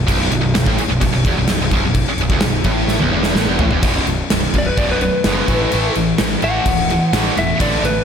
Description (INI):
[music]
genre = hard rock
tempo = 128 BPM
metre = 4/4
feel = straight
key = unclear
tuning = A4 = 440 Hz
[part]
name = heavy high-gain guitar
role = riff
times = 0.0-8.0 s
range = B1 to A3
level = -18 LUFS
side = right 1 dB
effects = distortion
[part]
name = fuzz picked electric bass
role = bass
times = 0.0-8.0 s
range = B0 to A1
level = -21 LUFS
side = equal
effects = overdrive
[part]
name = gated 80s drum kit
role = drums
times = 0.1-8.0 s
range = crash cymbal, kick drum, snare drum, toms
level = -19 LUFS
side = equal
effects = none
[part]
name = lightly driven lead guitar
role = melody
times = 4.6-8.0 s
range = B4 to F#5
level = -20 LUFS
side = left 1 dB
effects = slapback echo
[sound]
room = moderate lush hall reverb, RT60 1.8 s, studio reverb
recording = big arena sound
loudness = -14 LUFS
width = side -7 dB against mid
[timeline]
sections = 0.0-3.8 A section; 3.8-8.0 B section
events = drum fill 2.9-3.8; lead electric guitar solo 3.8-8.0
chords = 0.0 B7(no3); 3.8 B5; 5.5 A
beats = | 0.08 0.54 1.01 1.48 | 1.95 2.42 2.89 3.36 | 3.83 4.30 4.77 5.24 | 5.71 6.18 6.66 7.13 | 7.60